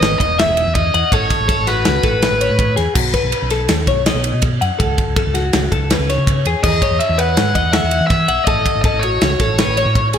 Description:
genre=math rock and midwest emo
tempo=163 BPM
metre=5/4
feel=straight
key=unclear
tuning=A4 = 438 Hz
part: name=overdriven electric guitar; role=melody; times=0.0-2.7, 6.6-10.1 s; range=B4 to F#5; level=-18 LUFS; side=equal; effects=slapback echo
part: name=clean electric guitar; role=accompaniment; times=0.0-0.8 s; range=E2 to E3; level=-30 LUFS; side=right 9 dB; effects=none
part: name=twelve-string electric guitar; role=arpeggios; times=0.0-10.2 s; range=F#4 to F#5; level=-20 LUFS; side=left 4 dB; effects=wide subtle chorus
part: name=fingered electric bass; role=bass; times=0.0-10.2 s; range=E1 to E3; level=-20 LUFS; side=equal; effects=none
part: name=modern studio drum kit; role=drums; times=0.0-10.2 s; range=crash cymbal, kick drum, ride cymbal, snare drum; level=-18 LUFS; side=equal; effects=none
room=moderate lush hall reverb, RT60 1.7 s, studio reverb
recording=big arena sound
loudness=-13 LUFS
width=side -8 dB against mid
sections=0.0-10.2 A section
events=none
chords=0.0 Emaj9; 1.1 A69; 3.0 B7; 4.8 A6/C#; 6.6 Eadd9; 8.5 A6

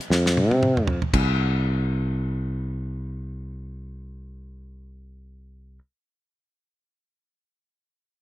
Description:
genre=electric jazz fusion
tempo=free time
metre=none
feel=none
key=unclear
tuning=A4 = 440 Hz
part: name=sustaining fretless electric bass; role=bass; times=0.0-5.8 s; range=C2 to C3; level=-24 LUFS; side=equal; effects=none
part: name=damped 70s drum kit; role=drums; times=0.0-1.3 s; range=crash cymbal, hi-hat, kick drum, snare drum, toms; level=-26 LUFS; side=equal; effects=none
room=little or no reverb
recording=bright 1980s-style digital production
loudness=-21 LUFS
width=side -16 dB against mid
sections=0.0-1.1 A section; 1.1-5.2 B section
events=drum fill 0.1-1.1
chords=none

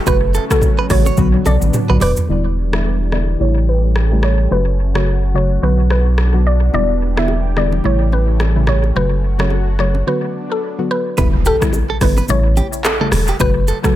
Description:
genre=afrobeats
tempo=108 BPM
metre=4/4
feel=swing 58% on 16ths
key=E dorian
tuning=A4 = 440 Hz
part: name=lush unison pad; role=sustained chords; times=0.0-11.2 s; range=E3 to G4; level=-27 LUFS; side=left 1 dB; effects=chorus, low-pass filter
part: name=direct-recorded clean electric guitar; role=riff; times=0.0-2.1, 11.2-13.8 s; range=G4 to D5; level=-24 LUFS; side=right 6 dB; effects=dub echo
part: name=mallet-like synth pluck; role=melody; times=0.1-13.9 s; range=A4 to E5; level=-21 LUFS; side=equal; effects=chorus, low-pass filter, dub echo
part: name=soft round pluck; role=accompaniment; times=0.1-14.0 s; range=C#3 to F#4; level=-21 LUFS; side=left 2 dB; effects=chorus, low-pass filter, dub echo
part: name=warm sub bass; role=bass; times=0.1-13.7 s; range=D1 to B1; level=-15 LUFS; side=equal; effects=none
part: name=afro-pop drum kit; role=drums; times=0.1-13.9 s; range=handclaps, hi-hat, kick drum, rim click, shaker, toms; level=-20 LUFS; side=equal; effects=dub echo
part: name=congas and bongos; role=percussion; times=0.1-2.2, 6.7-13.6 s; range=none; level=-26 LUFS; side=right 2 dB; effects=none
part: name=impact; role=sound effects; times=11.3-13.4 s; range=none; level=-24 LUFS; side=equal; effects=none
room=little or no reverb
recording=echo-heavy mix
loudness=-13 LUFS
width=side -13 dB against mid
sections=0.0-2.3 A section; 2.3-11.2 B section; 11.2-14.0 A section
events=drum fill 1.2-2.3; filter sweep 2.3-11.2; break 10.1-11.2; impact 11.2-13.4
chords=0.1 F#m; 1.2 Bm; 2.3 Em7; 3.4 A7; 4.5 F#m; 5.6 Bm; 6.7 Em7; 7.8 A7; 9.0 F#m; 10.1 Bm; 11.2 Em7; 12.3 A7; 13.4 F#m

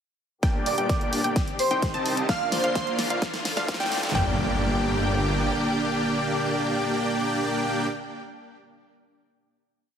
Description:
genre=EDM, festival progressive house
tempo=129 BPM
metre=4/4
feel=straight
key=G minor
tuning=A4 = 440 Hz
part: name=rich studio string section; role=sustained chords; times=0.4-7.9 s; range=D3 to G4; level=-32 LUFS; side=left 1 dB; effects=sidechain pumping, low-pass filter
part: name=wide unison pluck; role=arpeggios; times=0.4-7.9 s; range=F5 to A5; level=-32 LUFS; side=left 1 dB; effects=cassette tape, sidechain pumping, digital delay
part: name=dense compressed supersaw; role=riff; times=0.4-7.9 s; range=A3 to A5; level=-26 LUFS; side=equal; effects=sidechain pumping, low-pass filter, digital delay
part: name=wide detuned saw bass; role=bass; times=0.4-5.5 s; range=G1 to D2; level=-30 LUFS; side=equal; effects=chorus, sidechain pumping, high-pass filter
part: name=big-room dance drum kit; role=drums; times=0.4-4.3 s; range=handclaps, kick drum, snare drum, toms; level=-26 LUFS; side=equal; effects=none
part: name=big-room dance drum kit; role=drums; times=0.4-4.2 s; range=hi-hat, snare drum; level=-31 LUFS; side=equal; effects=none
part: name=riser and impact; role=sound effects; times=2.2-7.9 s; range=none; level=-36 LUFS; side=equal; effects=none
part: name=airy dreamy lead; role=melody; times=0.7-2.9 s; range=C5 to F5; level=-28 LUFS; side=equal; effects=chorus, digital delay
room=moderate lush hall reverb, RT60 2.3 s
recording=heavily compressed radio sound, high-pass filter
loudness=-22 LUFS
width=side -8 dB against mid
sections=0.4-4.2 build; 4.2-7.9 final chord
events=build-up 0.4-4.2; drum fill 0.4-4.2; filter sweep on supersaw synth 0.4-4.2; filter sweep on string section 0.4-4.2; filter sweep 0.4-4.2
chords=0.4 Gm; 1.4 Cm; 2.3 Bb; 3.2 Dm; 4.2 Gm

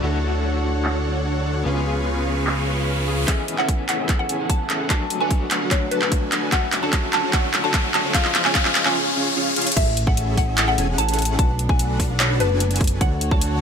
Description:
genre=future bass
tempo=148 BPM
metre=4/4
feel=half-time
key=A major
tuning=A4 = 439 Hz
part: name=electric guitar at the edge of break-up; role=accompaniment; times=0.0-8.9 s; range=E3 to C#5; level=-30 LUFS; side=left 4 dB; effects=tremolo, sidechain pumping, tape echo
part: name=warm chamber string section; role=sustained chords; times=0.0-13.6 s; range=D2 to C#6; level=-35 LUFS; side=equal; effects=sidechain pumping, low-pass filter
part: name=Celtic harp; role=arpeggios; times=0.0-5.4 s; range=F#4 to C#5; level=-34 LUFS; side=left 5 dB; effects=sidechain pumping, tape echo
part: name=dense compressed supersaw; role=riff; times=0.0-13.6 s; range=C#4 to A5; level=-26 LUFS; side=right 1 dB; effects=cassette tape, sidechain pumping, low-pass filter
part: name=fat analog bass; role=bass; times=0.0-3.3, 9.8-13.6 s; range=E1 to D2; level=-23 LUFS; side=equal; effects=sidechain pumping
part: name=trap drum kit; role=drums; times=0.0-13.5 s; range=crash cymbal, handclaps, hi-hat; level=-23 LUFS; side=equal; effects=overdrive, low-pass filter on hats, low-pass filter on snare, low-pass filter on cymbals
part: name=riser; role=sound effects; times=1.1-9.8 s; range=none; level=-28 LUFS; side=left 2 dB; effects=none
part: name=mallet-like synth pluck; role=melody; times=3.3-13.6 s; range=B4 to A5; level=-26 LUFS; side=equal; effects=wide subtle chorus, sidechain pumping, tape echo
part: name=electronic kick drum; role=drums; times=3.3-13.4 s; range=none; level=-21 LUFS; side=equal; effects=overdrive
room=light reverb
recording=none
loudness=-18 LUFS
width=side -7 dB against mid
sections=0.0-3.3 A section; 3.3-9.8 B section; 9.8-13.6 C section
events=riser 1.1-3.3, 3.3-9.8; build-up 3.3-9.8; drum fill 3.3-9.0, 9.6; break 9.0-9.8; drop 9.8-13.6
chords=0.0 Dmaj7; 1.7 C#7; 3.3 Amaj7; 4.9 Bm7; 6.5 Dmaj7; 8.1 C#7; 9.8 Amaj7; 11.4 Bm7; 13.0 Dmaj7

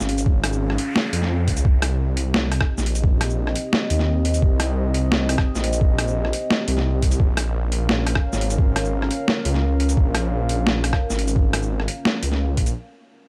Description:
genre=half-time drum and bass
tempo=173 BPM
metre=4/4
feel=half-time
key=C phrygian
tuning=A4 = 440 Hz
part: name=dark analog pad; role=sustained chords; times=0.0-13.3 s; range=C4 to F5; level=-30 LUFS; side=equal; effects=chorus, phaser, sidechain pumping
part: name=dark detuned saw bass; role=bass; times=0.0-12.7 s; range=Ab1 to F2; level=-24 LUFS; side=equal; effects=tube saturation
part: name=boom bap sampler-style drum kit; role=drums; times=0.0-12.7 s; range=hi-hat, rim click, shaker, snare drum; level=-26 LUFS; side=equal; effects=overdrive
part: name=electronic kick drum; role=drums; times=0.3-12.6 s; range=none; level=-21 LUFS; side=equal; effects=overdrive
part: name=noise sweep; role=sound effects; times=0.6-1.6 s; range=none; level=-39 LUFS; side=equal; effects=none
room=digital ambience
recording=dry, gritty hardware recording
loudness=-21 LUFS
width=mono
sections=0.0-12.7 A section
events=drop 0.0-12.7; noise sweep 0.6-1.6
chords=0.0 Db; 1.6 Cm; 7.2 Bbm; 12.7 Cm

